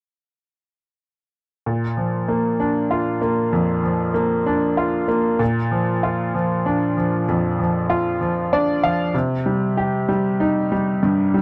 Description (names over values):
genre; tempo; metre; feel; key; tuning
pop; 64 BPM (dotted quarters); 6/8; straight; Bb major; A4 = 436 Hz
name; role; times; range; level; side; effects
bright upright piano; accompaniment; 1.7-11.4 s; F2 to F5; -20 LUFS; equal; none
room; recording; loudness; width
light reverb; dry, close 1970s-style studio recording; -21 LUFS; mono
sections
1.7-5.4 A section; 5.4-11.4 B section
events
upright piano fill 8.2-9.1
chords
1.7 Bb; 9.1 Cm